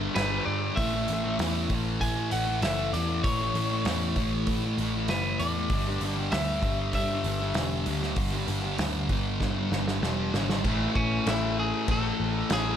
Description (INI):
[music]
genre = rock, shoegaze and dream pop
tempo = 97 BPM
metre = 4/4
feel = straight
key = unclear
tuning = A4 = 444 Hz
[part]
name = electric guitar at the edge of break-up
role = melody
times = 0.0-12.8 s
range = C#4 to G#5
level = -32 LUFS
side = left 1 dB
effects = tape echo
[part]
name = thick fuzz guitar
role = riff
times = 0.0-12.8 s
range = G2 to A3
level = -29 LUFS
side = left 1 dB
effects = distortion, lush chorus
[part]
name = vintage muted picked electric bass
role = bass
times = 0.0-12.7 s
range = E1 to A2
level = -31 LUFS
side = equal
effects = none
[part]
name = loose indie drum kit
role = drums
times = 0.2-12.6 s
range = crash cymbal, hi-hat, kick drum, snare drum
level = -32 LUFS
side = equal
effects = none
[sound]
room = light reverb, small room ambience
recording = none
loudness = -25 LUFS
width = side -9 dB against mid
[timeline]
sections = 0.8-10.6 A section; 10.6-12.8 B section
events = drum fill 9.4-10.6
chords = 0.0 G5; 0.8 A; 5.7 G5; 10.6 A5